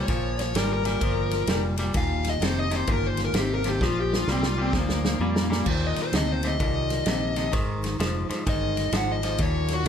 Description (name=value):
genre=electric blues shuffle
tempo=129 BPM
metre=4/4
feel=swing 64% on 8ths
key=Eb major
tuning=A4 = 440 Hz
part: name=dark smooth lead guitar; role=melody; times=0.0-9.9 s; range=Bb3 to Gb5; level=-28 LUFS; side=left 2 dB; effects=overdrive
part: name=electric guitar at the edge of break-up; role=riff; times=0.0-9.9 s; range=Eb2 to G3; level=-28 LUFS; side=left 1 dB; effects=none
part: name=vintage muted fingered electric bass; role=bass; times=0.0-9.9 s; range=Eb1 to F2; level=-29 LUFS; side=equal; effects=none
part: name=natural country drum kit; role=drums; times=0.1-9.9 s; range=crash cymbal, kick drum, ride cymbal, snare drum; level=-28 LUFS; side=right 1 dB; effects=none
room=light reverb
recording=lossy compression artefacts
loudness=-22 LUFS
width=side -8 dB against mid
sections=0.0-5.7 A section; 5.7-9.9 A section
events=lead electric guitar solo 0.0-9.9; drum fill 3.8-5.7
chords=0.0 Bb5; 1.9 Eb; 3.8 Bb; 5.7 Eb5; 7.5 Ab5